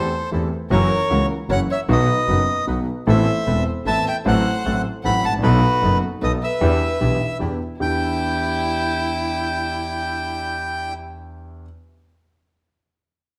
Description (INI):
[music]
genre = tango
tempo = 153 BPM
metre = 3/4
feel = rubato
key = E minor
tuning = A4 = 439 Hz
[part]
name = bandoneon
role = melody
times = 0.0-10.9 s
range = B4 to B5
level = -25 LUFS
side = equal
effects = none
[part]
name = warm violin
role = second line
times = 0.0-10.9 s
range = E4 to F#5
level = -30 LUFS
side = equal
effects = none
[part]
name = warm concert grand piano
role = accompaniment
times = 0.0-11.6 s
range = E1 to A4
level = -24 LUFS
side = equal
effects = none
[part]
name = bandoneon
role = stabs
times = 0.0-10.9 s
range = B3 to B4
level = -37 LUFS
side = equal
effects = none
[part]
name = clear double bass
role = bass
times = 0.0-8.0 s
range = E1 to E2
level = -26 LUFS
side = equal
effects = none
[sound]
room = wet large studio reverb, RT60 1.3 s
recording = none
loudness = -20 LUFS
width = mono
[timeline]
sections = 0.0-7.8 A section; 7.8-10.2 B section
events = none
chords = 0.0 C6/E; 0.7 F#7; 1.9 B; 3.1 Amadd9; 4.3 F#dim/A; 5.4 B7; 6.6 Em7